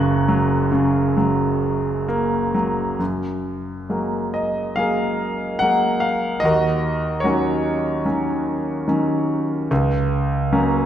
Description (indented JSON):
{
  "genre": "classical, lyrical solo piano",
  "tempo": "65-77 BPM",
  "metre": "4/4",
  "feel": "rubato",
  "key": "F# major",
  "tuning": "A4 = 440 Hz",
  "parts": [
    { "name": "clear concert grand piano", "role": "solo", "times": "0.0-10.9 s", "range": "F#1 to F#6", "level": "-18 LUFS", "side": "equal", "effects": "none" }
  ],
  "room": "wet concert hall reverb, RT60 2.0 s",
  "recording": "recorded in a church or concert hall, nothing above 10.5 kHz",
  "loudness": "-18 LUFS",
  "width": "side -10 dB against mid",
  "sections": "0.0-3.0 A section; 3.0-10.9 B section",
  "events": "none",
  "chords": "0.0 F#; 3.0 F#add9; 6.4 D#m7; 9.7 F#/C#"
}